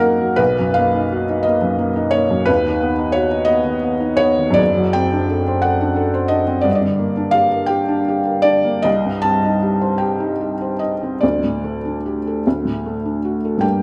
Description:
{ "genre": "classical, romantic nocturne for solo piano", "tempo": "48-60 BPM (dotted quarters)", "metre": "12/8", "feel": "rubato", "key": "unclear", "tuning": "A4 = 441 Hz", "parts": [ { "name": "felt-muted upright piano", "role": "solo", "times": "0.0-13.8 s", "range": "F#1 to A5", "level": "-18 LUFS", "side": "equal", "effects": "none" } ], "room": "moderate recital hall reverb, RT60 1.5 s", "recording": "none", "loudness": "-18 LUFS", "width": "mono", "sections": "0.0-13.6 A section", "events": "none", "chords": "0.4 Bmaj7; 2.5 B/D#; 4.6 D7/F#; 6.7 Gm; 8.9 Cm; 11.2 Dsus4; 12.4 D" }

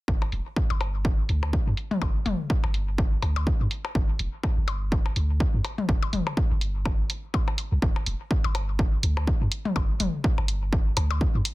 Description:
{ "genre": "minimal techno", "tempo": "124 BPM", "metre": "4/4", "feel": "swing 57% on 16ths", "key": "unclear", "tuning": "A4 = 440 Hz", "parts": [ { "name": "punchy sub bass", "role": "bass", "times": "0.1-11.4 s", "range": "F1 to G2", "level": "-26 LUFS", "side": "equal", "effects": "sidechain pumping" }, { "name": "electronic kick drum", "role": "drums", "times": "0.1-11.3 s", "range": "none", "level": "-25 LUFS", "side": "equal", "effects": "none" }, { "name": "electronic percussion blips and toms", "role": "percussion", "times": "0.2-11.2 s", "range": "none", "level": "-31 LUFS", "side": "left 4 dB", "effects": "dub echo" }, { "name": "electronic hi-hat", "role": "drums", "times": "0.3-11.5 s", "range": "none", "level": "-30 LUFS", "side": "right 1 dB", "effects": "low-pass filter on hats" } ], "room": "little or no reverb", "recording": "dense, heavily limited modern master", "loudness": "-23 LUFS", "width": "side -19 dB against mid", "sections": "0.1-11.5 A section", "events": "none", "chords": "none" }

